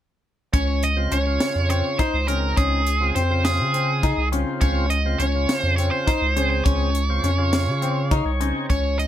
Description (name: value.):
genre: progressive instrumental, band music in an uneven meter.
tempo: 206 BPM (eighths).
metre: 7/8.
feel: straight.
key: Db major.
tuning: A4 = 440 Hz.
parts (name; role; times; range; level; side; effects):
nasal lead guitar with a parked wah; melody; 0.5-9.1 s; Ab4 to Eb5; -24 LUFS; right 3 dB; overdrive.
bright concert grand piano; arpeggios; 0.5-9.0 s; C4 to Eb4; -27 LUFS; left 5 dB; ping-pong delay.
round analog bass; bass; 0.5-9.1 s; C2 to Db3; -22 LUFS; equal; none.
tight funk drum kit; drums; 0.5-9.1 s; hi-hat, kick drum, snare drum; -24 LUFS; equal; none.
overdriven tonewheel organ; accompaniment; 1.0-8.7 s; Db3 to F5; -28 LUFS; equal; slow rotary speaker.
room: light reverb.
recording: none.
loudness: -19 LUFS.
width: side -11 dB against mid.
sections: 0.5-8.7 A section.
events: tonewheel organ fill 7.8-8.7.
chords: 0.5 Dbmaj7.